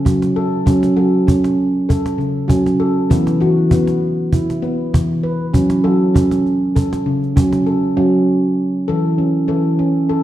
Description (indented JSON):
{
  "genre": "world meditative, meditative tuned percussion",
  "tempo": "99 BPM",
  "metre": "4/4",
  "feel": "swing 54% on 16ths",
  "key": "F# minor pentatonic",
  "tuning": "A4 = 441 Hz",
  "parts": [
    { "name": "handpan", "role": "arpeggios", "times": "0.0-10.2 s", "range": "C#3 to B4", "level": "-14 LUFS", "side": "equal", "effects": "none" },
    { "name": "cajon", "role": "percussion", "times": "0.1-7.7 s", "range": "none", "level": "-18 LUFS", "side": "equal", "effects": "none" }
  ],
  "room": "wet recital hall reverb, RT60 1.6 s, small room ambience",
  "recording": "dark, warm production",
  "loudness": "-13 LUFS",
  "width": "side -13 dB against mid",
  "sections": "0.0-8.0 A section; 8.0-10.2 B section",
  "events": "none",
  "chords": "0.0 F#m; 3.1 E5; 5.5 F#m; 8.0 A"
}